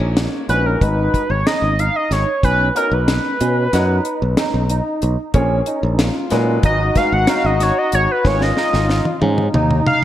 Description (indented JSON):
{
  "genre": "progressive instrumental, band music in an uneven meter",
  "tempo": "186 BPM (eighths)",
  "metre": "9/8",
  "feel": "straight",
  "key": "G# dorian",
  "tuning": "A4 = 438 Hz",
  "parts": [
    { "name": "clear concert grand piano", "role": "accompaniment", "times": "0.0-8.5 s", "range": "F#3 to F#5", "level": "-25 LUFS", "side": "left 2 dB", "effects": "none" },
    { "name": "barky tine electric piano", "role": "arpeggios", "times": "0.0-10.0 s", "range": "C#4 to D#4", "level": "-24 LUFS", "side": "right 3 dB", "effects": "ensemble chorus, digital delay" },
    { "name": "modern bright fingered electric bass", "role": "bass", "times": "0.0-9.8 s", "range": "G#1 to B2", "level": "-18 LUFS", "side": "equal", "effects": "none" },
    { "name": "deep reggae drum kit", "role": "drums", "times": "0.2-10.0 s", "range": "hi-hat, kick drum, snare drum, toms", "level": "-20 LUFS", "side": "equal", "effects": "gated reverb" },
    { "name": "lead with added fifth", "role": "melody", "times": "0.5-10.0 s", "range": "A#4 to F#5", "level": "-19 LUFS", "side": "equal", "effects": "chorus" },
    { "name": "breathy trombone", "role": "second line", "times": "5.3-10.0 s", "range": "C#4 to F#4", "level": "-23 LUFS", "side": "left 4 dB", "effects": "none" }
  ],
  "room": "moderate plate reverb, RT60 1.9 s, small room ambience",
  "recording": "bright 1980s-style digital production",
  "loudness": "-14 LUFS",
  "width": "side -12 dB against mid",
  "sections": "0.0-10.0 A section",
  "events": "analog synth lead solo 0.0-10.0; drum fill 8.3-10.0",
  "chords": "0.0 A#m7; 0.8 G#m7; 2.4 Badd9; 5.3 A#m7; 6.6 G#m7; 8.3 G#madd9"
}